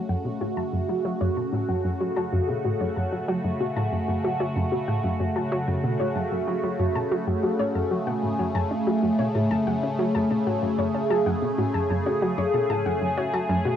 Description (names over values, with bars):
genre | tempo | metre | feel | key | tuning
ambient, sequencer-driven space music | 94 BPM | 4/4 | straight | F# minor | A4 = 440 Hz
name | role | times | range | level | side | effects
phased analog pad | sustained chords | 0.0-13.8 s | C#3 to G#4 | -25 LUFS | equal | phaser, chorus, cassette tape
soft round pluck | arpeggios | 0.0-13.8 s | F#4 to A5 | -33 LUFS | left 6 dB | chorus, auto-pan, cassette tape, tape echo
analog pluck | riff | 0.0-13.8 s | F#2 to C#4 | -27 LUFS | right 1 dB | chorus, cassette tape, tape echo
room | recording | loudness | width
wet booth ambience, RT60 0.2 s | home recording on cassette | -23 LUFS | side -9 dB against mid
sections
0.0-13.8 A section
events
filter sweep on synth arpeggio sound 0.0-13.8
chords
0.0 F#m